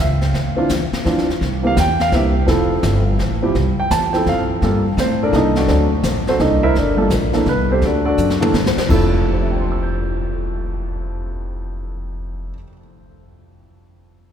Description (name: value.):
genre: jazz piano trio.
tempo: 168 BPM.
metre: 3/4.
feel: swing 64% on 8ths.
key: F major.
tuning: A4 = 440 Hz.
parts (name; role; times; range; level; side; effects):
warm grand piano; melody; 0.0-12.8 s; F2 to G6; -18 LUFS; right 1 dB; none.
upright bass; bass; 0.0-12.5 s; F1 to A2; -19 LUFS; equal; none.
jazz brush drum kit; drums; 0.2-9.3 s; brushed snare drum, crash cymbal, hi-hat, kick drum, snare drum, toms; -24 LUFS; left 2 dB; none.
room: wet cathedral reverb, RT60 7.0 s.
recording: recorded in a church or concert hall.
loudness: -15 LUFS.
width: side -8 dB against mid.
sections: 0.0-4.6 A section; 4.6-8.9 B section; 8.9-11.0 C section.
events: drum fill 8.2-8.9.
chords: 0.3 Dm9; 1.4 C7; 2.5 Fmaj7; 4.6 Gm9; 5.3 C13; 5.7 D7; 6.4 C13; 6.8 Gmadd9; 7.5 C5; 7.8 D; 8.5 N.C.; 8.9 Fmaj7.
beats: | 0.34 0.70 1.05 | 1.41 1.77 2.12 | 2.48 2.83 3.19 | 3.54 3.90 4.26 | 4.61 4.97 5.33 | 5.68 6.04 6.39 | 6.75 7.11 7.46 | 7.82 8.18 8.54 | 8.89 9.25 9.61 | 9.97 10.32 10.68.